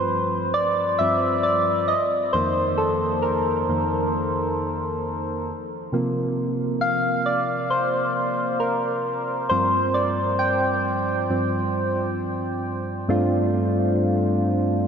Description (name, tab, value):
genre	R&B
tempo	67 BPM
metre	4/4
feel	straight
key	unclear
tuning	A4 = 440 Hz
part	soft electric-piano-like synth keys	solo	0.0-14.9 s	F2 to G5	-20 LUFS	equal	chorus, tape echo
room	wet huge ambient reverb, RT60 6.9 s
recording	dreamy mix soaked in reverb, nothing above 7.5 kHz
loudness	-20 LUFS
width	side -7 dB against mid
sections	0.0-13.1 A section; 13.1-14.9 A section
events	synth keys solo 0.0-13.1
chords	0.0 G7sus4; 1.9 F7sus4; 5.5 C7sus4; 9.5 G7sus4; 13.1 G9sus4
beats	0.55 1.44 | 2.34 3.23 4.13 5.03 | 5.92 6.82 7.71 8.61 | 9.50 10.40 11.29 12.19 | 13.09 13.98